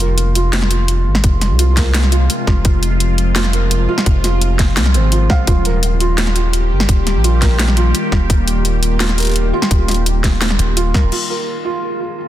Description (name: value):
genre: half-time drum and bass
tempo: 170 BPM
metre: 4/4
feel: half-time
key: F minor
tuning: A4 = 439 Hz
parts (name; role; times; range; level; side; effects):
- bowed-like drone; sustained chords; 0.0-12.3 s; C3 to Ab4; -22 LUFS; left 1 dB; built-in reverb, phaser, vintage 12-bit sampler grit, sidechain pumping
- felt-muted upright piano; arpeggios; 0.0-12.3 s; C4 to F5; -22 LUFS; right 4 dB; low-pass filter, ping-pong delay
- long sustained 808-style bass; bass; 0.0-11.1 s; Eb1 to C2; -15 LUFS; equal; none
- drum and bass drum kit; drums; 0.0-11.2 s; crash cymbal, hi-hat, snare drum; -19 LUFS; left 1 dB; overdrive, studio reverb
- electronic kick drum; drums; 1.2-11.0 s; none; -15 LUFS; equal; overdrive, studio reverb
room: light reverb, digital ambience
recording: dense, heavily limited modern master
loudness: -12 LUFS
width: side -13 dB against mid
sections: 0.0-11.1 A section; 11.1-12.3 B section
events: filter sweep on synth drone 11.1-12.3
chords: 0.0 Fm; 5.5 Eb; 11.1 Fm